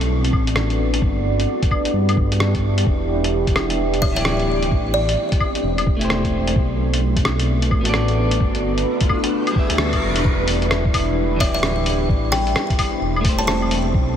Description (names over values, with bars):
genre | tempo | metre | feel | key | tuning
future garage | 130 BPM | 4/4 | swing 63% on 16ths | E minor | A4 = 442 Hz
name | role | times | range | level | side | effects
deep dark ambient pad | sustained chords | 0.0-14.2 s | G3 to D5 | -23 LUFS | right 1 dB | chorus, built-in reverb, sidechain pumping
dark detuned saw bass | bass | 0.0-14.2 s | D1 to G2 | -21 LUFS | equal | sidechain pumping
lo-fi sampler-style drum kit | drums | 0.0-13.8 s | claves, hi-hat, rim click | -24 LUFS | left 1 dB | none
electronic kick drum | drums | 0.3-14.1 s | none | -21 LUFS | equal | none
buzzing kalimba | melody | 4.0-5.4, 11.4-13.6 s | D5 to A5 | -26 LUFS | left 1 dB | ping-pong delay
clean electric guitar | accompaniment | 4.1-13.9 s | E3 to E5 | -27 LUFS | left 1 dB | sidechain pumping, ping-pong delay
riser | sound effects | 8.2-10.2 s | none | -32 LUFS | equal | none
room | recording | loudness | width
moderate huge ambient reverb, RT60 7.7 s | dreamy mix soaked in reverb | -16 LUFS | side -9 dB against mid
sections
0.0-10.2 A section; 10.2-14.2 B section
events
riser 8.2-10.2; band accent 9.8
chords
0.0 Bm7; 1.0 G6; 2.9 Em7; 4.7 Am7; 6.6 Bm7; 8.4 G6; 10.2 Em7; 12.1 Am7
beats
0.10 0.56 | 1.02 1.48 1.94 2.40 | 2.86 3.33 3.79 4.25 | 4.71 5.17 5.63 6.09 | 6.56 7.02 7.48 7.94 | 8.40 8.86 9.32 9.79 | 10.25 10.71 11.17 11.63 | 12.10 12.56 13.02 13.48 | 13.94